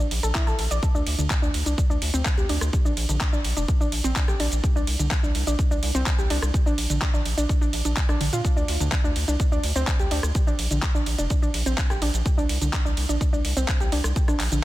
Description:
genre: progressive house.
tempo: 126 BPM.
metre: 4/4.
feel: straight.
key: unclear.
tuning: A4 = 441 Hz.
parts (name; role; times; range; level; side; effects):
soft round pluck; arpeggios; 0.0-14.6 s; D3 to D6; -28 LUFS; right 1 dB; chorus, sidechain pumping, dub echo.
round analog bass; bass; 0.0-14.6 s; F1 to Bb2; -26 LUFS; equal; sidechain pumping.
pop drum kit; drums; 0.0-14.6 s; handclaps, hi-hat, ride cymbal, rim click, shaker; -29 LUFS; equal; soft clipping on snare.
electronic kick drum; drums; 0.3-14.3 s; none; -23 LUFS; equal; none.
room: digital ambience.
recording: dense, heavily limited modern master.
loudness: -21 LUFS.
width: side -16 dB against mid.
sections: 0.0-14.6 A section.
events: none.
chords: 0.0 Bbmaj7#11; 0.8 Csus2; 2.7 Bb; 4.6 C5; 6.5 Bb; 8.4 Csus2; 10.4 Bb; 12.3 C5.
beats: 0.35 | 0.83 1.30 1.78 2.25 | 2.73 3.21 3.68 4.16 | 4.64 5.11 5.59 6.07 | 6.54 7.02 7.49 7.97 | 8.45 8.92 9.40 9.88 | 10.35 10.83 11.30 11.78 | 12.26 12.73 13.21 13.68 | 14.16.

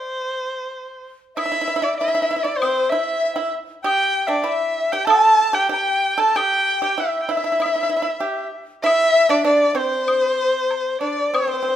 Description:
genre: chinese traditional, Chinese chamber ensemble.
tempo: 96 BPM.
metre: 2/4.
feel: rubato.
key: C gong mode.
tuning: A4 = 438 Hz.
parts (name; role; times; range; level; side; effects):
warm erhu; melody; 0.0-11.8 s; C5 to A5; -20 LUFS; right 1 dB; none.
mellow hollow dizi; second line; 1.4-11.8 s; C5 to A5; -22 LUFS; left 4 dB; none.
pipa; second line; 1.4-11.8 s; C4 to A4; -24 LUFS; right 6 dB; none.
woodblock; percussion; 1.4-11.5 s; none; -28 LUFS; left 3 dB; none.
room: moderate recital hall reverb, RT60 1.5 s.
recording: none.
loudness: -17 LUFS.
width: side -10 dB against mid.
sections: 0.0-1.4 A section; 1.4-11.3 B section.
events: none.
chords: none.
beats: | 0.10 0.73 | 1.37 2.00 | 2.61 3.22 | 3.84 4.46 | 5.08 5.71 | 6.34 6.97 | 7.60 8.22 | 8.84 9.45 | 10.06 10.69 | 11.32.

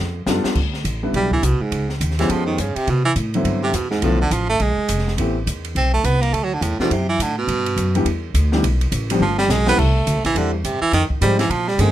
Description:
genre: jazz, small-group swing and bop.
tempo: 208 BPM.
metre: 4/4.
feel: swing 61% on 8ths.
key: G major.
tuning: A4 = 442 Hz.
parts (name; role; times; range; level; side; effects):
upright bass; bass; 0.0-11.9 s; F1 to C3; -20 LUFS; equal; none.
warm grand piano; accompaniment; 0.3-11.9 s; D3 to B4; -22 LUFS; left 1 dB; none.
open jazz drum kit; drums; 0.3-11.9 s; crash cymbal, hi-hat, kick drum, ride cymbal, snare drum, toms; -26 LUFS; equal; none.
bright baritone saxophone; second line; 1.2-11.9 s; G2 to C4; -20 LUFS; right 3 dB; none.
room: light reverb.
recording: close, detailed microphones, faint mains hum.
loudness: -17 LUFS.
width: side -12 dB against mid.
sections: 0.6-9.8 A section; 9.8-11.9 A section.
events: drum fill 0.0-0.6, 9.2-9.8; baritone saxophone solo 0.6-11.9.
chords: 0.0 G7; 0.6 G6; 1.7 C#7#11; 2.9 Cmaj9#11; 4.0 Bm7b5; 4.6 Bb5; 5.2 Am9; 6.3 Dadd9; 7.5 G6; 9.2 G; 9.8 C6; 10.9 Fm9.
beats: 0.27 | 0.56 0.85 1.14 1.43 | 1.72 2.00 2.29 2.58 | 2.87 3.16 3.45 3.74 | 4.03 4.32 4.61 4.89 | 5.18 5.47 5.76 6.05 | 6.33 6.62 6.91 7.20 | 7.49 7.77 8.06 8.35 | 8.63 8.92 9.21 9.50 | 9.78 10.07 10.36 10.65 | 10.93 11.22 11.51 11.79.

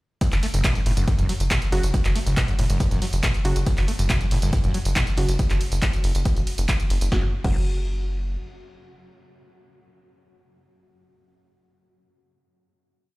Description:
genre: driving peak-time techno.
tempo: 139 BPM.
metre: 4/4.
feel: straight.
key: unclear.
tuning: A4 = 440 Hz.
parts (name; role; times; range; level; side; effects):
overdriven acid bass; riff; 0.2-7.6 s; F#1 to A3; -29 LUFS; equal; distortion, lush chorus, cassette tape, sidechain pumping, tape echo.
electronic kick drum; drums; 0.2-7.6 s; none; -22 LUFS; equal; none.
punchy analog drum machine; drums; 0.2-7.6 s; crash cymbal, handclaps, hi-hat, ride cymbal, snare drum, tambourine; -29 LUFS; equal; sidechain pumping on hats, sidechain pumping on cymbals, sidechain pumping on perc.
vintage drum kit; drums; 0.2-5.3 s; hi-hat, snare drum; -43 LUFS; right 1 dB; none.
tight sequencer bass; bass; 0.3-8.4 s; E1 to F#1; -23 LUFS; equal; sidechain pumping.
filtered dub chord stab; stabs; 1.7-11.2 s; C#3 to F#4; -33 LUFS; right 1 dB; chorus, sidechain pumping, tape echo.
room: digital ambience.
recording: played on a big sound system in a bare room, large studio reverb.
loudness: -20 LUFS.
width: side -21 dB against mid.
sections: 0.2-7.1 drop; 7.1-10.6 final chord.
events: drop 0.2-7.1.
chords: 0.2 F#5.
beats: | 0.21 0.64 1.08 1.51 | 1.94 2.37 2.80 3.23 | 3.67 4.10 4.53 4.96 | 5.39 5.82 6.26 6.69 | 7.12 7.55 7.98 8.41 | 8.85 9.28 9.71 10.14.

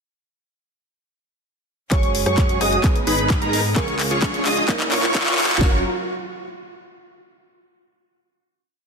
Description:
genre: EDM, festival progressive house.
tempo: 130 BPM.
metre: 4/4.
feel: straight.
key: F# major.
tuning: A4 = 440 Hz.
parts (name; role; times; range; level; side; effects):
kalimba; melody; 1.9-4.4 s; A#4 to D#5; -28 LUFS; right 6 dB; digital delay.
dark concert grand piano; accompaniment; 1.9-5.8 s; G#2 to A#4; -30 LUFS; right 2 dB; sidechain pumping, digital delay.
bright symphonic string section; sustained chords; 1.9-5.8 s; C#3 to B4; -32 LUFS; left 3 dB; none.
wide unison lead; arpeggios; 1.9-5.8 s; A#5 to D#6; -25 LUFS; equal; wide subtle chorus, sidechain pumping, digital delay.
dense compressed supersaw; riff; 1.9-5.8 s; D#4 to D#5; -25 LUFS; equal; sidechain pumping, low-pass filter, digital delay.
wide detuned saw bass; bass; 1.9-5.8 s; F#1 to G#2; -28 LUFS; equal; chorus, tube saturation, sidechain pumping.
house drum kit; drums; 1.9-5.7 s; handclaps, kick drum, snare drum; -19 LUFS; equal; overdrive.
house drum kit; drums; 1.9-5.6 s; handclaps, hi-hat, rim click; -23 LUFS; left 1 dB; overdrive, high-pass filter on snare, high-pass filter on hats.
riser; sound effects; 3.0-5.6 s; none; -28 LUFS; right 2 dB; none.
room: moderate digital room reverb, RT60 1.1 s.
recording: dense, heavily limited modern master, high-pass filter.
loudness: -17 LUFS.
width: side -5 dB against mid.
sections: 1.9-5.6 build; 5.6-7.5 final chord.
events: build-up 1.9-5.6; drum fill 1.9-5.6; filter sweep on supersaw synth 1.9-5.6; filter sweep 1.9-5.6; riser 3.0-5.6.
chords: 1.9 F#sus2; 2.8 G#m; 3.8 C#; 4.7 A#m; 5.6 F#.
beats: | 1.92 2.38 2.84 3.30 | 3.76 4.22 4.69 5.15 | 5.61.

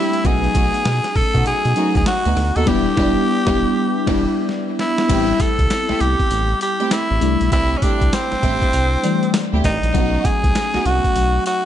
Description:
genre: R&B, new jack swing.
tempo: 99 BPM.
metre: 4/4.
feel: swing 63% on 16ths.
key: unclear.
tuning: A4 = 439 Hz.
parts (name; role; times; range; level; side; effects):
raspy tenor saxophone; melody; 0.0-11.7 s; C4 to A4; -20 LUFS; equal; none.
FM electric piano with soft pad layer; accompaniment; 0.0-11.7 s; E3 to D5; -22 LUFS; left 3 dB; chorus, tremolo.
warm studio string section; stabs; 0.0-10.9 s; A3 to G4; -26 LUFS; right 4 dB; none.
boom bap sampler-style drum kit; drums; 0.1-11.6 s; crash cymbal, hi-hat, kick drum, snare drum, tambourine; -21 LUFS; equal; none.
round analog bass; bass; 0.2-11.4 s; E1 to B2; -20 LUFS; equal; none.
room: light reverb.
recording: dark, warm production, nothing above 10.5 kHz.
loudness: -15 LUFS.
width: side -10 dB against mid.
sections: 0.0-5.1 A section; 5.1-11.7 B section.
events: band accent 2.7-5.1; drum fill 4.5-5.1.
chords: 0.2 B7; 2.7 Em7; 5.1 Am7; 7.2 C6; 9.9 B7.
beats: | 0.25 0.85 1.46 2.07 | 2.67 3.28 3.88 4.49 | 5.10 5.70 6.31 6.91 | 7.52 8.13 8.73 9.34 | 9.95 10.55 11.16.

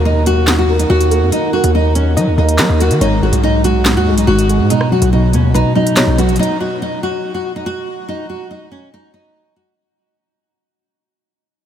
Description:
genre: hip hop, drill.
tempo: 142 BPM.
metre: 4/4.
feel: half-time.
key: Eb minor.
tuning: A4 = 440 Hz.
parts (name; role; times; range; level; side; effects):
soft round pluck; second line; 0.0-6.4 s; B4 to Eb5; -29 LUFS; left 3 dB; none.
dark concert grand piano; accompaniment; 0.0-6.4 s; Ab2 to Bb3; -17 LUFS; equal; ensemble chorus.
distorted 808-style bass; bass; 0.0-6.4 s; Ab1 to Gb3; -14 LUFS; equal; distortion.
nylon-string guitar; melody; 0.1-9.7 s; Db4 to Gb4; -17 LUFS; equal; wide subtle chorus, diffuse ambient delay.
drill drum kit; drums; 0.3-6.5 s; handclaps, hi-hat, rim click, snare drum; -20 LUFS; equal; none.
room: moderate huge ambient reverb, RT60 6.9 s.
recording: dreamy mix soaked in reverb.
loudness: -11 LUFS.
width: side -9 dB against mid.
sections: 0.0-6.4 A section; 6.4-9.8 B section.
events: fade-out 6.4-9.8.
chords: 0.0 Ebm; 3.0 Abm7; 4.7 B; 6.4 N.C..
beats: 0.06 0.48 0.90 | 1.32 1.75 2.17 2.59 | 3.01 3.44 3.86 4.28 | 4.70 5.12 5.55 5.97 | 6.39 6.82 7.24 7.66 | 8.08 8.51 8.93 9.35.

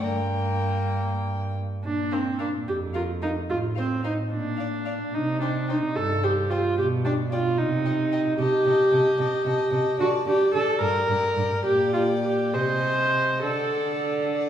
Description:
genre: quick classical-period movement for string quartet.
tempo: 65-76 BPM (dotted quarters).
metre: 6/8.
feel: rubato.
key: Bb major, G minor from 8.4 s.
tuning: A4 = 440 Hz.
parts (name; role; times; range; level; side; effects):
dark violin; melody; 0.0-14.5 s; F5 to A5; -36 LUFS; left 6 dB; none.
warm violin; second line; 0.0-14.5 s; Bb4 to Eb5; -34 LUFS; left 3 dB; none.
warm viola; accompaniment; 0.0-14.3 s; Bb3 to C5; -24 LUFS; right 1 dB; none.
rich cello; bass; 0.0-14.5 s; F2 to D3; -28 LUFS; right 2 dB; none.
room: wet recital hall reverb, RT60 1.8 s.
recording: heard from further back in the room.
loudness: -22 LUFS.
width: side -10 dB against mid.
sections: 0.0-1.8 A section; 1.8-14.5 B section.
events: none.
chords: 0.0 Gm; 1.8 Bb5; 3.5 F/A (rootless); 4.3 Bb; 5.1 C5; 6.8 N.C.; 7.6 Cm; 8.4 Am7b5/C; 10.0 D5; 10.8 Gm; 11.7 Gm/Bb; 12.5 Ab/C; 13.4 D.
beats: | 0.03 0.95 | 1.84 2.67 | 3.50 4.32 | 5.14 5.96 | 6.78 7.58 | 8.39 9.19 | 10.00 10.81 | 11.65 12.54 | 13.43 14.32.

